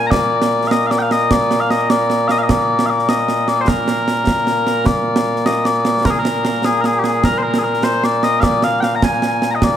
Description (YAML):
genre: scottish traditional, Scottish pipe music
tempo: 101 BPM (dotted quarters)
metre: 6/8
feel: straight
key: Bb mixolydian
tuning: A4 = 439 Hz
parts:
  - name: mellow small bagpipes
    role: melody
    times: 0.0-9.8 s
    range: Bb2 to Bb5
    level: -15 LUFS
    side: left 1 dB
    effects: tape echo
  - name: concert snare drum and concert bass drum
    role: drums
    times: 0.1-9.7 s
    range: none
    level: -19 LUFS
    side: right 2 dB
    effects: none
room: moderate scoring stage reverb, RT60 1.9 s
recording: none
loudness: -14 LUFS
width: side -10 dB against mid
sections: 0.0-4.9 A section; 4.9-9.8 A section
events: none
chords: none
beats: | 0.12 0.71 | 1.30 1.90 | 2.49 3.09 | 3.68 4.28 | 4.87 5.46 | 6.06 6.65 | 7.25 7.84 | 8.43 9.03 | 9.62